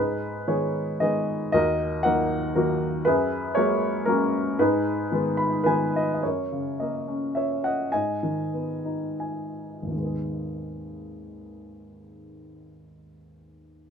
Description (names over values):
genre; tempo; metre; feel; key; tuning
classical, lyrical solo piano; 74-120 BPM; 3/4; rubato; G# minor; A4 = 440 Hz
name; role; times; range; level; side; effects
warm upright piano; solo; 0.0-13.9 s; G#1 to B5; -23 LUFS; equal; none
room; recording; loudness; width
moderate studio reverb, RT60 0.6 s; minimal, uncompressed stereo recording; -23 LUFS; side -7 dB against mid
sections
0.0-6.2 A section; 6.2-9.9 B section; 9.9-13.9 C section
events
upright piano fill 5.1-6.2, 8.8-9.9; slowing down 6.2-9.9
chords
0.0 G#m; 1.5 D#m; 3.1 F#add9; 4.6 G#m; 6.2 F#; 7.9 G#m